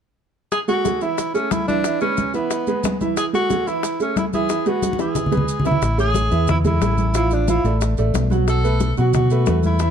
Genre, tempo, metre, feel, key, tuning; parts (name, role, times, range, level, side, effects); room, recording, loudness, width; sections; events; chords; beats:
latin, salsa; 181 BPM; 4/4; straight; A major; A4 = 440 Hz
warm tenor saxophone; melody; 0.5-9.9 s; B3 to A4; -23 LUFS; equal
bongos; percussion; 0.5-9.9 s; -28 LUFS; left 9 dB
congas; percussion; 0.5-9.9 s; -25 LUFS; left 1 dB
maracas; percussion; 0.5-9.9 s; -35 LUFS; right 8 dB
clear grand piano; accompaniment; 0.7-9.9 s; E3 to F#5; -23 LUFS; right 5 dB
fingered electric bass; bass; 5.8-9.9 s; A1 to B2; -18 LUFS; left 1 dB
light reverb; dark, warm production; -17 LUFS; side -8 dB against mid
0.5-5.8 A section; 5.8-9.9 B section
drum fill 4.8-5.8
0.5 A5; 1.8 E; 3.2 A5; 4.5 E; 5.8 Amaj7; 7.1 Dmadd9/A; 8.5 B5
| 0.52 0.85 1.18 1.51 | 1.84 2.17 2.51 2.84 | 3.17 3.50 3.83 4.16 | 4.49 4.83 5.16 5.49 | 5.82 6.15 6.49 6.82 | 7.15 7.48 7.81 8.14 | 8.48 8.81 9.14 9.47 | 9.80